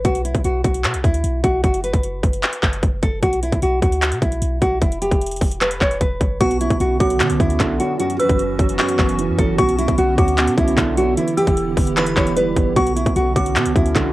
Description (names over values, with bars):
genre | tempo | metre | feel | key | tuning
hip hop, trap | 151 BPM | 4/4 | half-time | B minor | A4 = 444 Hz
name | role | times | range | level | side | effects
nylon-string guitar | melody | 0.0-14.1 s | E4 to C#5 | -21 LUFS | equal | cassette tape, analog delay
clean 808-style bass | bass | 0.0-14.1 s | E1 to B2 | -23 LUFS | equal | none
trap drum kit | drums | 0.0-14.0 s | handclaps, hi-hat, kick drum | -19 LUFS | equal | overdrive, cassette tape
delicate synth tine bell | second line | 6.4-13.9 s | B5 to E6 | -28 LUFS | left 2 dB | chorus, phaser, cassette tape, analog delay
dark grand piano | accompaniment | 6.4-14.1 s | F#2 to B3 | -23 LUFS | right 5 dB | cassette tape
hollow soft pad | sustained chords | 6.7-14.1 s | D3 to G4 | -24 LUFS | left 1 dB | ensemble chorus, cassette tape
room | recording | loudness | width
little or no reverb | home recording on cassette | -16 LUFS | side -17 dB against mid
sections
0.0-6.4 A section; 6.4-14.1 B section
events
none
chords
0.0 Bm; 1.6 F#sus4; 3.2 Bm; 4.8 Em; 6.4 Bmadd9; 8.0 F#7sus4; 9.6 Bmadd9; 11.2 Em7; 12.8 Bmadd9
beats
| 0.05 0.45 0.84 1.24 | 1.64 2.04 2.43 2.83 | 3.23 3.62 4.02 4.42 | 4.82 5.21 5.61 6.01 | 6.41 6.80 7.20 7.60 | 8.00 8.39 8.79 9.19 | 9.59 9.98 10.38 10.78 | 11.17 11.57 11.97 12.37 | 12.76 13.16 13.56 13.96